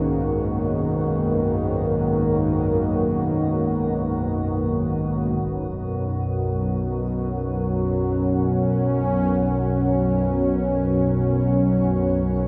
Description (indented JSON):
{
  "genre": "dark ambient drone",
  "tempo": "free time",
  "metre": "none",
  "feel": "none",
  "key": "unclear",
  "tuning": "A4 = 440 Hz",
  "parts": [
    { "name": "sweeping resonant pad", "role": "sustained chords", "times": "0.0-12.5 s", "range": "G#2 to C#4", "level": "-24 LUFS", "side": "equal", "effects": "chorus" },
    { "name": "organ-like drone", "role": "drone", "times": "0.0-12.5 s", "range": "B1 to F#2", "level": "-28 LUFS", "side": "equal", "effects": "ensemble chorus, built-in reverb" },
    { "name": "impact", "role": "percussion", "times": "5.5-5.6 s", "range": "none", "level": "-49 LUFS", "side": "equal", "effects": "none" }
  ],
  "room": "wet lush hall reverb, RT60 2.9 s",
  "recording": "dreamy mix soaked in reverb",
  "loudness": "-22 LUFS",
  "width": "mono",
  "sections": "0.0-5.4 A section; 5.4-12.5 B section",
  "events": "none",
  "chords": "0.0 G#m; 5.4 Bsus2",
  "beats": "free time"
}